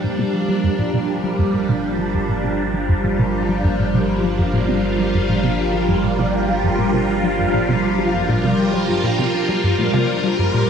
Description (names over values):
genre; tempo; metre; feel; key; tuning
ambient, sequencer-driven space music; 100 BPM; 4/4; straight; G minor; A4 = 441 Hz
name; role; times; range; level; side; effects
phased string machine; sustained chords; 0.0-10.7 s; G3 to Bb4; -19 LUFS; equal; ensemble chorus, phaser
concert harp; arpeggios; 0.0-10.7 s; F3 to Bb4; -25 LUFS; moving between left 1 dB and right 5 dB; auto-pan, low-pass filter, ping-pong delay
resonant blip pluck; riff; 0.0-10.6 s; G2 to G3; -22 LUFS; equal; chorus, phaser, ping-pong delay
analog drone; bass; 1.6-10.7 s; G1; -28 LUFS; equal; chorus
room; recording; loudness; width
wet concert hall reverb, RT60 2.1 s; none; -16 LUFS; side -7 dB against mid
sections
0.0-10.7 A section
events
filter sweep on synth arpeggio sound 0.0-10.7; filter sweep on harp 0.0-10.7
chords
0.0 Gm7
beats
0.49 1.09 1.69 | 2.29 2.89 3.49 4.09 | 4.69 5.29 5.89 6.49 | 7.09 7.69 8.29 8.89 | 9.49 10.09 10.69